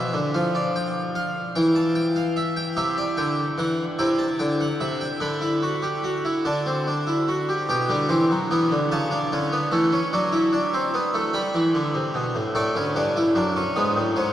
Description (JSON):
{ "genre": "classical, baroque-style 3-part fugue for harpsichord", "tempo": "49 BPM (dotted quarters)", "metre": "6/8", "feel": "straight", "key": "G major", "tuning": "A4 = 440 Hz", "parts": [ { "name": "harpsichord", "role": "solo", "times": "0.0-14.3 s", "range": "D2 to B5", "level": "-21 LUFS", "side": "equal", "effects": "none" } ], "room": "wet cathedral reverb, RT60 5.2 s", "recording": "worn, warbling old tape, cassette tape, warbly pitch drift, faint mains hum", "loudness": "-21 LUFS", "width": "side -12 dB against mid", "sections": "0.0-7.7 A section; 7.7-14.3 B section", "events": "none", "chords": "0.3 Dm/F; 1.6 Emadd11; 2.8 C; 5.2 Dsus4; 6.5 D; 7.7 G/B; 8.9 A/C#; 10.1 D/F#; 11.4 G; 12.6 D; 13.8 E7/G# (rootless)" }